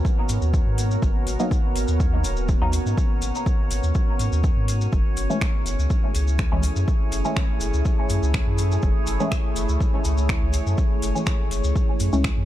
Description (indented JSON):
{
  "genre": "dub techno",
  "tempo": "123 BPM",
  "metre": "4/4",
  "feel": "straight",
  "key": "unclear",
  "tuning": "A4 = 440 Hz",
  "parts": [
    { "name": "deep dark ambient pad", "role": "sustained chords", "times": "0.0-12.4 s", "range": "A3 to A#4", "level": "-30 LUFS", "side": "equal", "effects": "chorus, built-in reverb, sidechain pumping" },
    { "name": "electronic kick drum", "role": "drums", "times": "0.0-12.3 s", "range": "none", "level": "-22 LUFS", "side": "equal", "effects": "overdrive, studio ambience" },
    { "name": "drifting glass-harmonics texture", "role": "texture", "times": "0.0-12.4 s", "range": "C#4 to C#5", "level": "-35 LUFS", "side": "left 2 dB", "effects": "chorus, built-in reverb, sidechain pumping" },
    { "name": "maracas", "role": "percussion", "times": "0.1-12.4 s", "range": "none", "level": "-36 LUFS", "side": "left 3 dB", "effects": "none" },
    { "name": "pure sine sub bass", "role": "bass", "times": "0.3-12.4 s", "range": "D#1 to G#2", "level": "-23 LUFS", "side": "equal", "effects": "sidechain pumping" },
    { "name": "deep house drum kit", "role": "drums", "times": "0.3-12.3 s", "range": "finger snaps, hi-hat", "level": "-33 LUFS", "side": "equal", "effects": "overdrive, studio ambience" },
    { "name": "filtered dub chord stab", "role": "stabs", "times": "1.4-12.3 s", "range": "E3 to D#4", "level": "-30 LUFS", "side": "equal", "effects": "chorus, phaser, sidechain pumping, dub echo" }
  ],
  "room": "digital ambience",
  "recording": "dark, warm production",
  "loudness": "-20 LUFS",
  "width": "side -13 dB against mid",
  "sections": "0.0-12.4 A section",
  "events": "none",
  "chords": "0.0 G#m9; 4.9 F#m9"
}